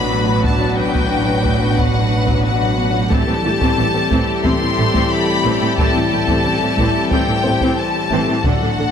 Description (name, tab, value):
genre	cinematic, hybrid orchestral and electronic film score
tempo	90 BPM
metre	4/4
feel	straight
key	A dorian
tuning	A4 = 440 Hz
part	warm symphonic violin section	melody	0.0-8.9 s	F#5 to C6	-22 LUFS	left 5 dB	none
part	rich symphonic violin section	second line	0.0-8.9 s	F#4 to B4	-23 LUFS	left 3 dB	none
part	warm symphonic viola section	accompaniment	0.0-8.8 s	D3 to D4	-23 LUFS	equal	none
part	airy breathy pad	sustained chords	0.0-8.9 s	E3 to B4	-26 LUFS	left 2 dB	chorus
part	mellow French horn section	sustained chords	0.0-8.9 s	A3 to E4	-26 LUFS	left 7 dB	none
part	warm trombone section	sustained chords	0.0-8.9 s	A2 to G3	-25 LUFS	right 3 dB	none
part	clear symphonic double bass section	bass	0.0-8.8 s	A1	-23 LUFS	right 3 dB	none
part	rich symphonic cello section	bass	0.0-8.9 s	A2	-24 LUFS	right 2 dB	none
part	felt-muted upright piano	texture	0.0-8.9 s	C4 to C5	-31 LUFS	left 2 dB	none
part	wide unison pluck	arpeggios	0.1-8.9 s	D3 to B4	-28 LUFS	right 1 dB	none
part	solo taiko drums	drums	0.4-8.9 s	none	-23 LUFS	equal	none
room	moderate concert hall reverb, RT60 2.5 s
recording	close, detailed microphones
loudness	-14 LUFS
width	side -8 dB against mid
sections	0.0-8.9 A section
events	none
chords	0.0 Bm/A; 3.1 Am7